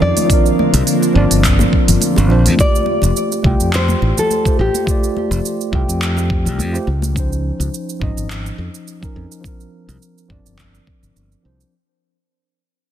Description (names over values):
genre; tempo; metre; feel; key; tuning
sunset chillout; 105 BPM; 4/4; swing 54% on 16ths; F major; A4 = 438 Hz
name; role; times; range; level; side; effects
nylon-string guitar; melody; 0.0-6.3 s; G4 to D5; -21 LUFS; equal; digital delay
mellow tine electric piano; accompaniment; 0.0-11.8 s; F3 to G5; -20 LUFS; right 1 dB; auto-pan, ping-pong delay
airy breathy pad; sustained chords; 0.0-2.6 s; D3 to Eb5; -21 LUFS; equal; chorus
modern bright fingered electric bass; bass; 0.0-11.6 s; F1 to F2; -16 LUFS; equal; none
deep house drum kit; drums; 0.2-11.7 s; handclaps, hi-hat, shaker; -22 LUFS; right 4 dB; none
congas and bongos; percussion; 0.2-7.1 s; none; -26 LUFS; left 5 dB; none
electronic kick drum; drums; 0.3-11.0 s; none; -17 LUFS; equal; none
room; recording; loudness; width
light reverb; dense, heavily limited modern master; -13 LUFS; side -10 dB against mid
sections
0.0-2.6 A section; 2.6-11.7 B section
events
fade-out 2.6-11.7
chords
0.3 C9sus4; 2.6 F69; 6.9 Dbmaj9; 9.4 C9sus4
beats
| 0.30 0.87 1.44 2.01 | 2.58 3.16 3.73 4.30 | 4.87 5.44 6.01 6.58 | 7.16 7.73 8.30 8.87 | 9.44 10.01 10.58 11.16